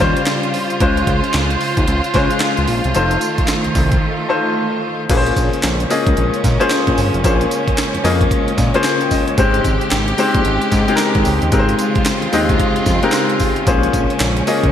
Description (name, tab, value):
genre	R&B, new jack swing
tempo	112 BPM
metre	4/4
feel	swing 62% on 16ths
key	Bb dorian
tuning	A4 = 442 Hz
part	clear baby grand piano	accompaniment	0.0-14.7 s	G3 to Ab5	-17 LUFS	left 3 dB	none
part	rich studio string section	sustained chords	0.0-14.7 s	Db3 to C5	-21 LUFS	right 2 dB	none
part	fat analog bass	bass	0.0-14.7 s	F1 to Db3	-19 LUFS	equal	none
part	breakbeat sampler-style drum kit	drums	0.0-14.7 s	crash cymbal, handclaps, hi-hat, kick drum, snare drum, tambourine	-19 LUFS	equal	gated reverb
room	moderate lush hall reverb, RT60 2.1 s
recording	bright 1980s-style digital production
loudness	-13 LUFS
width	side -9 dB against mid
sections	0.0-5.1 A section; 5.1-14.7 B section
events	break 4.0-5.1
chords	0.0 Eb13; 0.8 Dbmaj7; 3.0 F7; 5.1 Bbm9; 9.4 Abmaj7; 13.7 Bbm9